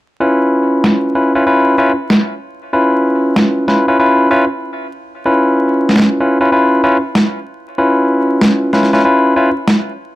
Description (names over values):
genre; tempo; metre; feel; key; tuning
glitch hop; 95 BPM; 4/4; swing 64% on 16ths; unclear; A4 = 439 Hz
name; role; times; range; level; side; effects
barky tine electric piano; stabs; 0.2-9.5 s; C#4 to B4; -12 LUFS; equal; overdrive, vintage 12-bit sampler grit, low-pass filter, digital delay
electronic snare drum; drums; 0.8-9.8 s; none; -12 LUFS; equal; overdrive, low-pass filter on snare, low-pass filter on room
room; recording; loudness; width
wet small room reverb, RT60 0.5 s; vinyl crackle; -10 LUFS; side -16 dB against mid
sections
0.2-10.2 A section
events
none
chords
0.2 C#7#9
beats
| 0.20 0.84 1.47 2.10 | 2.73 3.36 4.00 4.63 | 5.26 5.89 6.52 7.15 | 7.78 8.42 9.05 9.68